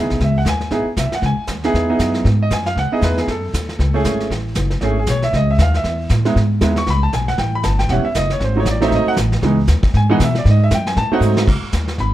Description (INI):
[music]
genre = jazz, small-group swing and bop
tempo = 234 BPM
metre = 4/4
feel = swing 58% on 8ths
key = C# minor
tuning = A4 = 442 Hz
[part]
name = clear concert grand piano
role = accompaniment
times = 0.0-12.1 s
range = E3 to C#6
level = -19 LUFS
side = right 2 dB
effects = none
[part]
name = upright bass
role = bass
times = 0.0-12.1 s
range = E1 to B2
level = -17 LUFS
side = equal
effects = none
[part]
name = vintage brush drum kit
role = drums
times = 0.1-12.1 s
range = brushed snare drum, crash cymbal, hi-hat, kick drum, snare drum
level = -23 LUFS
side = equal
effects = none
[sound]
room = little or no reverb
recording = close, detailed microphones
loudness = -14 LUFS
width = side -14 dB against mid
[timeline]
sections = 0.0-11.5 A section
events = drum fill 11.2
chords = 0.0 C#m9; 3.3 F#m9; 5.3 C#m9; 7.4 A7; 8.4 G#7b9; 9.4 C#m9; 10.5 G#7b9; 11.5 C#7sus2